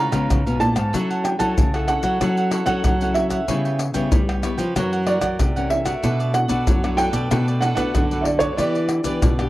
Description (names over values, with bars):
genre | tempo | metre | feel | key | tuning
samba and choro | 94 BPM | 4/4 | straight | unclear | A4 = 441 Hz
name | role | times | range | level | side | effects
felt-muted upright piano | melody | 0.0-9.2 s | C#5 to Bb5 | -24 LUFS | right 2 dB | slapback echo
cavaquinho | accompaniment | 0.0-9.5 s | D4 to G5 | -30 LUFS | right 4 dB | none
nylon-string guitar | accompaniment | 0.0-9.5 s | F#2 to A4 | -28 LUFS | left 4 dB | none
nylon-string guitar | bass | 0.0-9.5 s | G#2 to B3 | -23 LUFS | equal | none
maracas, surdo, pandeiro and tamborim | percussion | 0.1-9.5 s | none | -22 LUFS | left 1 dB | none
room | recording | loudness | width
little or no reverb | dry, close 1970s-style studio recording | -18 LUFS | side -16 dB against mid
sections
0.0-9.5 A section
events
none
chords
0.0 C#7; 0.9 F#m7; 3.5 C#m7b5; 4.8 F#7; 6.0 Bm7; 8.6 Em7